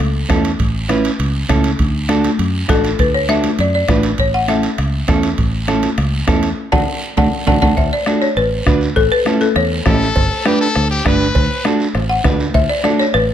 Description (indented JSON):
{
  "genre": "latin, cumbia",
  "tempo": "201 BPM",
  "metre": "4/4",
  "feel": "straight",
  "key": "D major",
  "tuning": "A4 = 439 Hz",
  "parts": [
    { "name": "folk marimba with hard mallets", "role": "melody", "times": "0.0-0.3, 2.7-10.0, 12.1-13.3 s", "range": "A4 to A5", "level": "-17 LUFS", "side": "left 3 dB", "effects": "none" },
    { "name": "fingered electric bass", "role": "bass", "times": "0.0-13.3 s", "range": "G1 to F#2", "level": "-19 LUFS", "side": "equal", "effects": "none" },
    { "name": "bombo", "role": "percussion", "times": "0.0-13.3 s", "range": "none", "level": "-19 LUFS", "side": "equal", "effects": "none" },
    { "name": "timbales and cowbell", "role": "percussion", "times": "0.0-13.3 s", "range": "none", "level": "-27 LUFS", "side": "right 5 dB", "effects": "none" },
    { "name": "semi-hollow electric guitar", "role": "accompaniment", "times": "0.3-13.1 s", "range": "A3 to B4", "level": "-20 LUFS", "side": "right 5 dB", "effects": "none" },
    { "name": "congas", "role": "percussion", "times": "0.3-13.0 s", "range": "none", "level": "-23 LUFS", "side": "left 4 dB", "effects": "none" },
    { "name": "guiro", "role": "percussion", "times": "0.3-13.3 s", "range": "none", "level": "-29 LUFS", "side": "right 3 dB", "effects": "none" },
    { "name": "brilliant trumpet", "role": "second line", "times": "9.9-11.7 s", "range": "G4 to B4", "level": "-19 LUFS", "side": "left 4 dB", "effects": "none" }
  ],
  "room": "moderate large studio reverb, RT60 1.1 s",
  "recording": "none",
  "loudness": "-13 LUFS",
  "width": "side -10 dB against mid",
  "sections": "0.0-7.8 A section; 7.8-13.3 B section",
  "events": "drum fill 6.6-7.8; band accent 6.6-7.8",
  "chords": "0.0 A; 1.8 D; 4.2 A; 6.6 D; 9.0 A7; 10.2 G; 11.4 D"
}